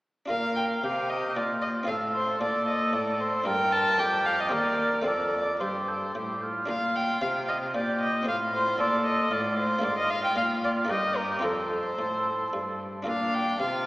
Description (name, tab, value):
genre	classical, baroque-style sonata movement with continuo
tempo	113 BPM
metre	3/4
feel	straight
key	Bb major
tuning	A4 = 438 Hz
part	warm violin	melody	0.3-13.9 s	Bb4 to A5	-28 LUFS	left 1 dB	none
part	mellow oboe	second line	0.3-13.9 s	D4 to Bb4	-29 LUFS	right 1 dB	none
part	buff-stop harpsichord	accompaniment	0.3-13.9 s	Eb2 to C5	-36 LUFS	equal	none
part	rich cello	bass	0.3-13.9 s	Eb2 to C3	-34 LUFS	left 1 dB	none
room	wet concert hall reverb, RT60 2.4 s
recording	heard from further back in the room, small speaker sound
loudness	-24 LUFS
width	side -19 dB against mid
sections	0.3-13.1 A section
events	none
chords	0.3 Bb; 1.9 F/A; 3.5 Gm; 4.5 Cm/Eb; 5.1 F; 6.7 Bb; 8.3 F/A; 9.8 Bb7/Ab; 10.9 Eb/G; 11.4 F; 13.1 Bb